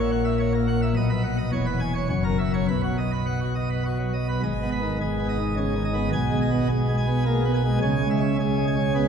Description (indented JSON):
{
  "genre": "classical, organ toccata",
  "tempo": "106 BPM",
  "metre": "3/4",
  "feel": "straight",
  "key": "B major, G# minor from 4.4 s",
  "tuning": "A4 = 440 Hz",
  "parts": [
    { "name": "pipe organ, plenum", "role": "solo", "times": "0.0-9.1 s", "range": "E1 to G#5", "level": "-21 LUFS", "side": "equal", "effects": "none" }
  ],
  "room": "wet church reverb, RT60 2.8 s",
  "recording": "heard from further back in the room",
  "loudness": "-21 LUFS",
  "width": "side -7 dB against mid",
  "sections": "0.0-4.4 A section; 4.4-9.1 B section",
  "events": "none",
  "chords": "0.0 F#7/A#; 1.0 B; 1.5 E6; 2.1 F#7; 2.7 B; 4.4 G#m; 6.1 G#m/B; 7.8 C#m"
}